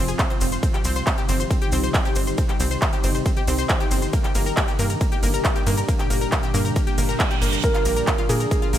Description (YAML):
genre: uplifting trance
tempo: 137 BPM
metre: 4/4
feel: straight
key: C minor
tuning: A4 = 439 Hz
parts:
  - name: shimmering ambient pad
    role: sustained chords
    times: 0.0-8.8 s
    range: Ab2 to G4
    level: -28 LUFS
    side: equal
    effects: chorus, built-in reverb, sidechain pumping
  - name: analog pluck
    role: arpeggios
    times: 0.0-8.8 s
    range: Bb3 to C5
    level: -28 LUFS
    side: left 2 dB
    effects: chorus, cassette tape, sidechain pumping, digital delay
  - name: tight sequencer bass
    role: bass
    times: 0.0-8.8 s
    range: F1 to Bb2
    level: -24 LUFS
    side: equal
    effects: sidechain pumping
  - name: big-room dance drum kit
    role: drums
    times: 0.1-8.8 s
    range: handclaps, hi-hat, ride cymbal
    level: -28 LUFS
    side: right 1 dB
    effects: overdrive, studio reverb
  - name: cabasa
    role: percussion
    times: 0.1-8.8 s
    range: none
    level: -33 LUFS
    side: left 3 dB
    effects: none
  - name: electronic kick drum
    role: drums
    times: 0.2-8.6 s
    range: none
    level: -22 LUFS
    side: equal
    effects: overdrive, studio reverb
  - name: reverse cymbal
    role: sound effects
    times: 7.0-7.6 s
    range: none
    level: -31 LUFS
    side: right 8 dB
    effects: none
  - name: felt-muted upright piano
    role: second line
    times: 7.6-8.8 s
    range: Ab4 to Bb4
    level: -24 LUFS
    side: right 4 dB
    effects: tape echo
room: light reverb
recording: none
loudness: -19 LUFS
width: side -11 dB against mid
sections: 0.0-8.8 A section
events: reverse cymbal 7.0-7.6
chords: 0.0 Fm; 0.6 Cm; 4.1 Gm; 7.6 Bb